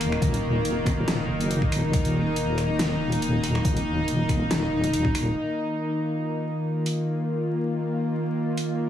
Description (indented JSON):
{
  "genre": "deep dubstep",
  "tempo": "140 BPM",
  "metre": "4/4",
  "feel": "swing 54% on 16ths, half-time",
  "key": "unclear",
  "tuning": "A4 = 440 Hz",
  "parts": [
    { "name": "bowed-like drone", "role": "sustained chords", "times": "0.0-8.9 s", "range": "Eb3 to F4", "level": "-25 LUFS", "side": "equal", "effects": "built-in reverb" },
    { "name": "deep soft wobble bass", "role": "bass", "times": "0.0-5.3 s", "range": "Eb1 to Gb1", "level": "-26 LUFS", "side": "left 1 dB", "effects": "chorus" },
    { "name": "dubstep drum kit", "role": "drums", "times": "0.0-8.7 s", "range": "finger snaps, hi-hat, snare drum", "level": "-30 LUFS", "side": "equal", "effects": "overdrive" },
    { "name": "electronic kick drum", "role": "drums", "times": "0.2-5.1 s", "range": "none", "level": "-24 LUFS", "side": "equal", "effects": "overdrive" }
  ],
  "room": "moderate echo chamber reverb, RT60 1.4 s",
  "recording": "heavily compressed radio sound, vinyl crackle, studio reverb",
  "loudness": "-23 LUFS",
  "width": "side -10 dB against mid",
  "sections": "0.0-5.4 A section; 5.4-8.9 B section",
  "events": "drop 0.0-5.4",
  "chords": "0.0 Eb5",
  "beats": "| 0.22 0.65 1.08 1.51 | 1.93 2.36 2.79 3.22 | 3.65 4.08 4.51 4.93 | 5.36 5.79 6.22 6.65 | 7.08 7.51 7.93 8.36 | 8.79"
}